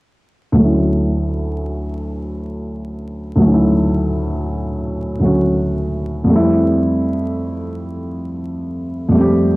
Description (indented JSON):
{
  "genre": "hip hop",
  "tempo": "84 BPM",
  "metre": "4/4",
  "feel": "swing 63% on 16ths",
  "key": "D major",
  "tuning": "A4 = 440 Hz",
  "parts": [
    { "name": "felt-muted upright piano", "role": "accompaniment", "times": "0.5-9.6 s", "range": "D2 to G4", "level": "-15 LUFS", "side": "equal", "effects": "low-pass filter" }
  ],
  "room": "moderate lush hall reverb, RT60 2.4 s",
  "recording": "home recording on cassette, vinyl crackle",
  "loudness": "-15 LUFS",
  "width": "side -21 dB against mid",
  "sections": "0.6-9.6 A section",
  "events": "filter sweep on felt piano 0.6-9.6",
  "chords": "0.6 Dmaj9; 6.3 Fmaj9"
}